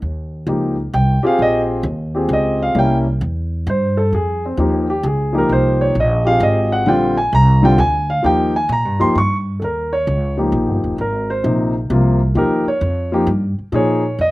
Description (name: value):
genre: jazz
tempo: 131 BPM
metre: 3/4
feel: swing 68% on 8ths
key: Eb mixolydian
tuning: A4 = 440 Hz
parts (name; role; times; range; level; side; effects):
- upright bass; bass; 0.0-14.3 s; Eb1 to Bb2; -18 LUFS; equal; none
- warm concert grand piano; melody; 0.5-14.3 s; C3 to Db6; -16 LUFS; equal; slapback echo
room: little or no reverb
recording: recorded outdoors, with no room sound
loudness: -14 LUFS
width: side -19 dB against mid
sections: 0.0-9.6 A section; 9.6-14.3 B section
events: grand piano solo 0.0-9.6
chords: 0.0 Eb7; 2.8 C7; 4.1 Fm7; 6.9 Bb; 8.2 Eb; 9.6 Eb7; 11.0 Ab; 12.4 Eb7; 13.7 Bbm7